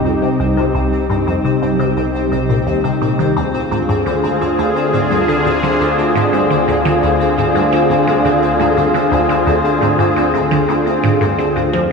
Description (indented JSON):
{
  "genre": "ambient, sequencer-driven space music",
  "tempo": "86 BPM",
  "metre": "4/4",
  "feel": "straight",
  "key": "unclear",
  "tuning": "A4 = 440 Hz",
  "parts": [
    { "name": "sweeping resonant pad", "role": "sustained chords", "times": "0.0-11.9 s", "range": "C2 to A4", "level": "-14 LUFS", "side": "equal", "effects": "chorus" },
    { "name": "resonant blip pluck", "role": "riff", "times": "0.0-11.9 s", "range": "C2 to F3", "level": "-19 LUFS", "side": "equal", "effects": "phaser, analog delay" },
    { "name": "pulsing gated texture", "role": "texture", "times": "0.0-11.9 s", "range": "C4 to C5", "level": "-21 LUFS", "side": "left 2 dB", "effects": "chorus, built-in reverb" }
  ],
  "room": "wet spring reverb, RT60 2.4 s",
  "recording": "echo-heavy mix, studio reverb",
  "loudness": "-12 LUFS",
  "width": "side -4 dB against mid",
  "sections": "0.0-11.9 A section",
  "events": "none",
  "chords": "0.0 Cm; 3.4 Ddim"
}